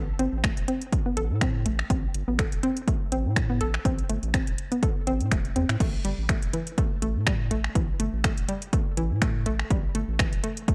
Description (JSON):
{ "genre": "minimal techno", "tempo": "123 BPM", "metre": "4/4", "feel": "swing 55% on 16ths", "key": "A minor", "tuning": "A4 = 440 Hz", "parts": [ { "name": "round analog bass", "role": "bass", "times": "0.0-10.4 s", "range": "E1 to A2", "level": "-31 LUFS", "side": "equal", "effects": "sidechain pumping" }, { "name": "hollow square pluck", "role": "riff", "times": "0.2-10.7 s", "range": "E3 to A4", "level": "-33 LUFS", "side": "equal", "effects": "chorus, sidechain pumping, tape echo" }, { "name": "house drum kit", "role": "drums", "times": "0.2-10.7 s", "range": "crash cymbal, finger snaps, hi-hat", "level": "-35 LUFS", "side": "equal", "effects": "overdrive" }, { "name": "electronic kick drum", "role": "drums", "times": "0.4-10.7 s", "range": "none", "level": "-29 LUFS", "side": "equal", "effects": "overdrive" } ], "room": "little or no reverb", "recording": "dry, gritty hardware recording, cassette tape", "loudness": "-26 LUFS", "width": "mono", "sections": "0.0-5.8 A section; 5.8-10.7 B section", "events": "drop 5.8-10.7", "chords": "0.0 Am; 5.8 A5", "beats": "0.44 0.93 1.41 | 1.90 2.39 2.88 3.36 | 3.85 4.34 4.83 5.32 | 5.80 6.29 6.78 7.27 | 7.75 8.24 8.73 9.22 | 9.71 10.19 10.68" }